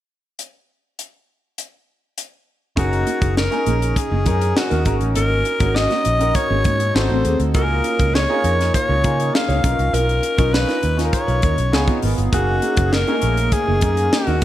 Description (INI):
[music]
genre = polished 1980s jazz-funk pop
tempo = 100 BPM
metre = 4/4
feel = straight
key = unclear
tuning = A4 = 440 Hz
[part]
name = tight funk drum kit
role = drums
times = 0.4-14.4 s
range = hi-hat, kick drum, snare drum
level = -22 LUFS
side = equal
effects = gated reverb
[part]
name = raspy alto saxophone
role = melody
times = 2.8-14.4 s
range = Gb4 to F5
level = -21 LUFS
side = left 1 dB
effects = none
[part]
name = clear concert grand piano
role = accompaniment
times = 2.8-14.4 s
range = A3 to Bb4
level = -24 LUFS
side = right 1 dB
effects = analog chorus
[part]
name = mellow electric guitar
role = riff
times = 2.8-14.4 s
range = A3 to Db5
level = -28 LUFS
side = right 2 dB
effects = analog chorus
[part]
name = vintage muted fingered electric bass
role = bass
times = 2.8-14.4 s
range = Gb1 to Db3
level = -20 LUFS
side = equal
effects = none
[sound]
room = light reverb, small room ambience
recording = none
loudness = -16 LUFS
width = side -13 dB against mid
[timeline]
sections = 0.4-2.8 A section; 2.8-14.4 B section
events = none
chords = 0.4 N.C.; 2.8 Gb69; 4.9 Ab9sus4; 7.0 Ab7b9; 7.5 Db6; 9.6 Cbmaj9#11; 11.7 Db7; 12.3 Gb69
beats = | 0.39 0.98 1.58 2.18 | 2.77 3.37 3.97 4.56 | 5.16 5.76 6.35 6.95 | 7.55 8.15 8.74 9.34 | 9.94 10.54 11.13 11.73 | 12.33 12.93 13.53 14.12